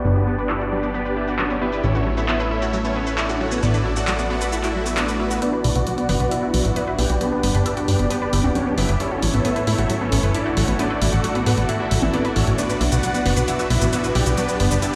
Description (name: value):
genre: uplifting trance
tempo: 134 BPM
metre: 4/4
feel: straight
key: B minor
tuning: A4 = 440 Hz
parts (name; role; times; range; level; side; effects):
- supersaw chords; melody; 0.0-15.0 s; B3 to G5; -26 LUFS; equal; low-pass filter, dub echo
- analog pluck; arpeggios; 0.0-14.9 s; F#3 to B4; -29 LUFS; equal; chorus, dub echo
- plucky analog bass; bass; 0.0-14.8 s; D1 to A2; -24 LUFS; equal; none
- punchy analog drum machine; drums; 0.0-14.9 s; congas, handclaps, hi-hat, shaker; -30 LUFS; equal; none
room: light reverb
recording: played on a big sound system in a bare room, large studio reverb, low-pass filter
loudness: -21 LUFS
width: mono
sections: 0.0-5.4 A section; 5.4-15.0 B section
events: filter sweep 0.0-5.4; build-up 5.4-15.0; filter sweep on supersaw synth 5.4-15.0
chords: 0.0 G; 1.8 A; 3.6 Dadd9/A; 5.4 Bm; 7.2 G; 9.0 A; 10.8 Dadd9/A; 12.6 Bm; 14.4 G